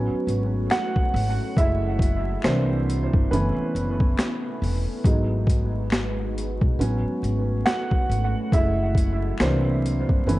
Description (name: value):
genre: lo-fi hip hop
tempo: 69 BPM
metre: 4/4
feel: swing 60% on 16ths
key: unclear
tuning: A4 = 440 Hz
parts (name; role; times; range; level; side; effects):
- dark upright piano; accompaniment; 0.0-10.4 s; E3 to F#5; -26 LUFS; right 2 dB; cassette tape, low-pass filter, dub echo
- deep dark ambient pad; sustained chords; 0.0-10.4 s; G#3 to B4; -33 LUFS; left 1 dB; chorus, built-in reverb, low-pass filter
- upright bass; bass; 0.0-10.4 s; E1 to C2; -25 LUFS; equal; none
- boom bap sampler-style drum kit; drums; 0.3-10.4 s; finger snaps, hi-hat, kick drum, snare drum; -23 LUFS; equal; overdrive
- finger snap; percussion; 0.7-9.6 s; none; -42 LUFS; left 6 dB; none
room: light reverb, small room reverb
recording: echo-heavy mix, vinyl crackle, nothing above 11.0 kHz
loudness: -20 LUFS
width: side -17 dB against mid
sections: 0.0-10.4 A section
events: upright piano solo 0.0-10.4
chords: 0.0 A6; 1.6 F#m9; 2.4 C9; 3.3 B7sus4/F#; 5.0 G#m7; 6.8 A6; 8.5 F#m9; 9.4 C9